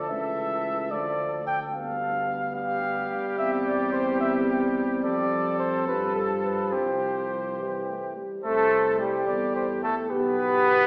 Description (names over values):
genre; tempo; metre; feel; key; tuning
classical, brass quintet; 72 BPM (dotted quarters); 6/8; straight; C major; A4 = 441 Hz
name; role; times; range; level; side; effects
mellow cornet; melody; 0.0-10.9 s; G4 to G5; -31 LUFS; equal; none
bright trumpet; second line; 0.0-10.9 s; G4 to B4; -34 LUFS; equal; none
bright trombone; accompaniment; 0.0-10.9 s; E3 to B3; -31 LUFS; equal; none
mellow French horn; accompaniment; 0.0-10.9 s; G3 to A4; -34 LUFS; equal; none
mellow tuba; bass; 0.0-10.9 s; B1 to G2; -36 LUFS; equal; none
room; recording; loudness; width
wet recital hall reverb, RT60 1.4 s; heard from further back in the room, small speaker sound; -26 LUFS; mono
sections
0.0-8.4 A section; 8.4-10.9 A section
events
none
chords
0.1 A/C#; 0.9 Dm; 1.7 G7/D; 3.4 C/E; 5.0 Dm7/F; 5.9 G9; 6.7 C; 10.1 G/B